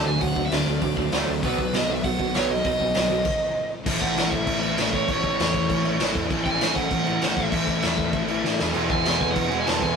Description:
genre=punk rock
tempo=196 BPM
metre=4/4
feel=straight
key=unclear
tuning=A4 = 441 Hz
part: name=crunchy overdriven guitar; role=melody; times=0.0-10.0 s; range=B4 to A5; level=-26 LUFS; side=right 1 dB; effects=none
part: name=crunchy overdriven guitar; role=riff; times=0.0-10.0 s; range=E2 to D4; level=-29 LUFS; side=equal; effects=none
part: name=distorted electric guitar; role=riff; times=0.0-10.0 s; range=E2 to D4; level=-32 LUFS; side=left 6 dB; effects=distortion
part: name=overdriven electric guitar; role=riff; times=0.0-3.2, 8.7-10.0 s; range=B2 to G#4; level=-27 LUFS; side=right 6 dB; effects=none
part: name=overdriven picked electric bass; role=bass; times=0.1-10.0 s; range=E1 to E2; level=-32 LUFS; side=left 1 dB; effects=none
part: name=raw garage drum kit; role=drums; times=0.2-9.9 s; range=crash cymbal, hi-hat, kick drum, snare drum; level=-25 LUFS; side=equal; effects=none
room=light reverb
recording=rough rehearsal-room recording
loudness=-21 LUFS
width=side -6 dB against mid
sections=0.0-3.9 A section; 3.9-10.0 B section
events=stop 3.3-3.9; drum fill 8.4-8.7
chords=0.0 D; 1.4 B; 3.9 A; 8.6 E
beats=| 0.20 0.51 0.81 1.12 | 1.42 1.73 2.04 2.34 | 2.65 2.95 3.26 3.56 | 3.87 4.17 4.48 4.78 | 5.09 5.39 5.70 6.00 | 6.31 6.61 6.92 7.22 | 7.53 7.83 8.14 8.44 | 8.75 9.05 9.36 9.67

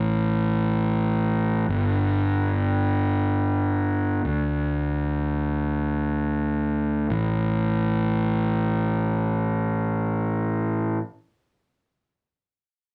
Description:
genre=rock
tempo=free time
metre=none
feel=none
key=unclear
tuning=A4 = 440 Hz
part: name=fuzz fingered electric bass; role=bass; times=0.0-11.0 s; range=G1 to D2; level=-24 LUFS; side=equal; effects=overdrive
room=little or no reverb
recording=small room ambience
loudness=-24 LUFS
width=mono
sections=0.0-7.1 A section; 7.1-10.2 B section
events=slowing down 1.7-7.1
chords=none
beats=free time

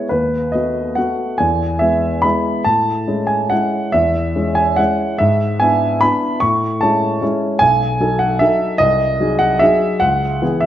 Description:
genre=classical, piano waltz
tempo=135-157 BPM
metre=3/4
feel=rubato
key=E major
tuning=A4 = 442 Hz
part: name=warm grand piano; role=solo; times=0.0-10.7 s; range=B1 to C#6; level=-14 LUFS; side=equal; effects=none
room=wet recital hall reverb, RT60 1.6 s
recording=dark, warm production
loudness=-14 LUFS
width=side -11 dB against mid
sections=0.0-10.7 A section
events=none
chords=0.1 B7/D#; 1.4 E; 2.7 Amaj7; 5.2 E7/G#; 6.4 Amaj7; 7.6 B7; 8.8 G#7/B#; 10.0 C#m7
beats=| 0.11 0.53 0.97 | 1.40 1.81 2.24 | 2.66 3.08 3.51 | 3.94 4.35 4.78 | 5.20 5.61 6.02 | 6.42 6.82 7.22 | 7.61 8.00 8.41 | 8.80 9.20 9.61 | 10.02 10.42

